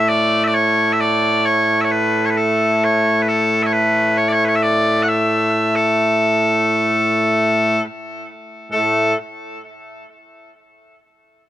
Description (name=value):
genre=scottish traditional, Scottish pipe music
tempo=66 BPM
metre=3/4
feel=straight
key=A major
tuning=A4 = 440 Hz
part: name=loud bright bagpipes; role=solo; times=0.0-9.1 s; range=A2 to F#5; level=-15 LUFS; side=equal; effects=tape echo
room=light reverb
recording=home recording on cassette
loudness=-14 LUFS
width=side -13 dB against mid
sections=0.0-8.7 A section; 8.7-11.5 B section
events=none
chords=none